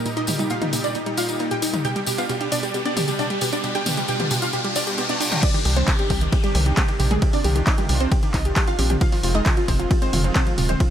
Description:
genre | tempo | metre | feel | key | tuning
uplifting trance | 134 BPM | 4/4 | straight | C minor | A4 = 445 Hz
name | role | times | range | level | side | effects
riser, reverse cymbal and downlifter | sound effects | 0.7-9.0 s | none | -30 LUFS | left 1 dB | none
wide unison pluck | melody | 0.1-10.9 s | G3 to G5 | -26 LUFS | equal | wide subtle chorus, sidechain pumping, tape echo
wide unison pluck | second line | 0.1-10.9 s | Eb4 to G5 | -32 LUFS | equal | sidechain pumping, tape echo
supersaw pad | sustained chords | 0.1-10.9 s | Bb2 to G4 | -30 LUFS | right 1 dB | sidechain pumping
wide unison pluck | arpeggios | 0.1-10.8 s | Bb2 to Eb4 | -29 LUFS | right 2 dB | sidechain pumping, tape echo
punchy analog drum machine | drums | 0.1-10.9 s | crash cymbal, handclaps, hi-hat, ride cymbal, toms | -27 LUFS | left 1 dB | none
tambourine | percussion | 0.1-5.4 s | none | -31 LUFS | left 4 dB | none
electronic kick drum | drums | 5.4-10.9 s | none | -20 LUFS | equal | overdrive
tight sequencer bass | bass | 5.7-10.8 s | Eb1 to C2 | -21 LUFS | equal | sidechain pumping
room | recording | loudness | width
light reverb | none | -19 LUFS | side -10 dB against mid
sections
0.0-5.4 A section; 5.4-10.9 B section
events
build-up 0.0-5.4; filter sweep on synth arpeggio sound 0.0-5.4; riser 0.7-5.4; reverse cymbal 4.5-5.4; drop 5.4-10.9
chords
0.0 Eb; 1.8 G; 5.4 Cmadd9; 9.0 Fm7

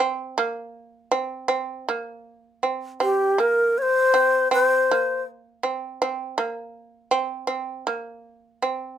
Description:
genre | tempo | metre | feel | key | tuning
japanese traditional, Japanese chamber music | 80 BPM | 2/4 | rubato | unclear | A4 = 439 Hz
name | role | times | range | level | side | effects
shamisen | second line | 0.0-9.0 s | Bb3 to C4 | -25 LUFS | right 4 dB | none
breathy bright long shakuhachi | melody | 3.0-5.2 s | G4 to Db5 | -18 LUFS | left 1 dB | none
room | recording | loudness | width
light reverb | none | -21 LUFS | side -9 dB against mid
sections
0.0-9.0 A section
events
none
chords
none

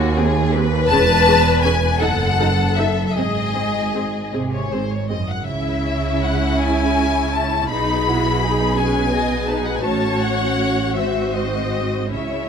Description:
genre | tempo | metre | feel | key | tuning
classical, slow romantic movement for string orchestra | 49-57 BPM (dotted quarters) | 6/8 | rubato | unclear | A4 = 440 Hz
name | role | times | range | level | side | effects
rich symphonic violin section | second line | 0.0-12.5 s | D#4 to E5 | -23 LUFS | left 2 dB | none
rich symphonic cello section | bass | 0.0-12.5 s | D#2 to C#3 | -24 LUFS | right 3 dB | none
rich symphonic double bass section | bass | 0.0-12.5 s | E1 to D#2 | -23 LUFS | right 3 dB | none
rich symphonic viola section | accompaniment | 0.2-12.5 s | B3 to A4 | -24 LUFS | right 1 dB | none
rich symphonic violin section | melody | 0.9-12.5 s | B#4 to B5 | -22 LUFS | left 6 dB | none
room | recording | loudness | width
moderate scoring stage reverb, RT60 1.9 s | none | -16 LUFS | side -7 dB against mid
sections
0.0-12.5 A section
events
none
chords
0.0 G#/D#; 0.9 C#m/E; 2.0 D#dim/F#; 3.1 G#; 5.5 C#m; 7.7 G#m/B; 9.8 F#m/A; 10.9 G#7

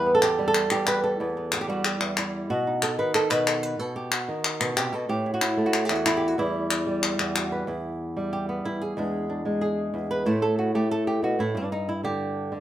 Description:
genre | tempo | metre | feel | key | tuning
flamenco | 186 BPM | 4/4 | straight | E harmonic minor, E minor from 7.7 s | A4 = 440 Hz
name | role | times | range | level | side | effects
flamenco guitar | melody | 0.0-12.6 s | E2 to C5 | -24 LUFS | right 1 dB | none
palmas hand claps | percussion | 0.2-7.5 s | none | -26 LUFS | left 3 dB | none
room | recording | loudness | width
moderate large studio reverb, RT60 0.9 s | minimal, uncompressed stereo recording | -23 LUFS | side -12 dB against mid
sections
0.0-7.7 A section; 7.7-12.6 B section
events
nylon-string guitar solo 7.7-12.6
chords
0.0 Em; 2.5 B; 5.1 A5; 6.4 Emadd9; 7.7 Em; 9.0 E7; 10.3 A5; 11.6 G5

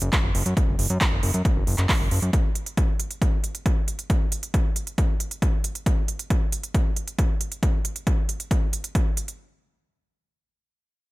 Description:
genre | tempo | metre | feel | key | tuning
uplifting trance | 136 BPM | 4/4 | straight | unclear | A4 = 440 Hz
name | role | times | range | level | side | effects
fat analog bass | bass | 0.0-2.3 s | F#1 to F#2 | -23 LUFS | equal | sidechain pumping
big-room dance drum kit | drums | 0.0-9.4 s | handclaps, hi-hat | -28 LUFS | right 2 dB | overdrive
electronic kick drum | drums | 0.1-9.0 s | none | -22 LUFS | equal | overdrive
room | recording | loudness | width
little or no reverb | none | -21 LUFS | side -20 dB against mid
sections
0.0-9.4 A section; 9.4-11.1 B section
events
none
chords
none

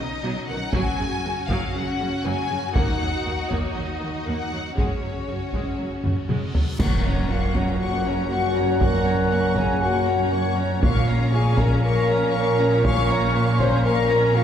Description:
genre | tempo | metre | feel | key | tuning
cinematic, epic orchestral film score | 119 BPM | 4/4 | straight | unclear | A4 = 442 Hz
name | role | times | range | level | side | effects
warm symphonic violin section | melody | 0.0-14.4 s | Db5 to Db6 | -32 LUFS | left 4 dB | none
rich symphonic violin section | second line | 0.0-14.4 s | D#4 to Gb5 | -33 LUFS | left 3 dB | none
clear symphonic viola section | accompaniment | 0.0-14.4 s | Db3 to Eb4 | -30 LUFS | equal | none
clear symphonic cello section | bass | 0.0-14.4 s | Eb2 to B2 | -28 LUFS | right 1 dB | none
rich studio double bass section | bass | 0.0-14.4 s | Gb1 to Eb2 | -28 LUFS | right 2 dB | none
mellow French horn section | sustained chords | 0.7-14.4 s | Ab3 to Db5 | -25 LUFS | left 2 dB | none
taiko ensemble | drums | 0.7-14.1 s | none | -26 LUFS | equal | none
reverse cymbal and impact | sound effects | 6.3-8.8 s | none | -35 LUFS | equal | none
large flute ensemble | second line | 6.8-14.4 s | Db5 to Db6 | -30 LUFS | left 2 dB | none
warm trombone section | sustained chords | 6.8-14.4 s | Bb2 to Db4 | -30 LUFS | right 2 dB | none
mellow trumpet | stabs | 6.8-14.4 s | F5 to Gb5 | -30 LUFS | left 1 dB | none
clash cymbals and concert bass drum | percussion | 6.8-7.8 s | none | -29 LUFS | equal | none
room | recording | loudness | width
wet scoring stage reverb, RT60 1.8 s | heard from further back in the room | -20 LUFS | side -9 dB against mid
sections
0.0-6.8 A section; 6.8-14.4 B section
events
drum fill 6.0-6.8; reverse cymbal 6.3-6.8; band accent 6.8-7.3; impact 6.8-8.8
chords
0.0 Badd9; 0.7 Gbsus2; 2.8 Ebm; 4.8 Gbsus2; 6.8 Gb; 10.8 Bbm

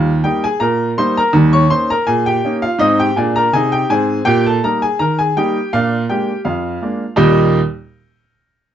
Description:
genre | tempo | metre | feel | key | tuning
ragtime piano | 82 BPM | 2/4 | straight | Eb major | A4 = 440 Hz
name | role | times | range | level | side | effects
clear upright piano | solo | 0.0-7.6 s | Eb2 to Db6 | -13 LUFS | equal | none
room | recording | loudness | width
moderate club reverb, RT60 0.5 s | dark, warm production, nothing above 7.9 kHz | -13 LUFS | side -10 dB against mid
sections
0.0-7.2 A section; 7.2-8.6 B section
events
none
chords
0.0 Eb; 1.3 Eb7; 2.8 Ab; 4.3 Eb/Bb; 5.7 Bb7; 7.2 Eb

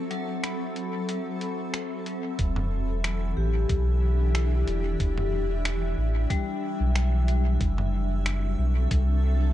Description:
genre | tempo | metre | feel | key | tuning
ambient dub | 92 BPM | 4/4 | swing 54% on 16ths | E minor | A4 = 440 Hz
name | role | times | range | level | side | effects
granular cloud pad | sustained chords | 0.0-9.5 s | E3 to E5 | -32 LUFS | equal | built-in reverb
vibraphone with medium hard mallets | arpeggios | 0.0-7.7 s | F#3 to B5 | -34 LUFS | left 5 dB | dub echo
lo-fi sampler-style drum kit | drums | 0.1-9.1 s | finger snaps, hi-hat, toms | -34 LUFS | equal | dub echo
warm sub bass | bass | 2.4-9.5 s | E1 to C2 | -24 LUFS | equal | none
electronic kick drum | drums | 2.4-9.1 s | none | -27 LUFS | equal | none
room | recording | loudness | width
little or no reverb | nothing above 10.6 kHz | -24 LUFS | side -13 dB against mid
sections
0.0-2.4 A section; 2.4-9.5 B section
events
break 0.0-2.4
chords
0.0 F#m7b5; 2.4 Em7; 7.6 F#m7b5

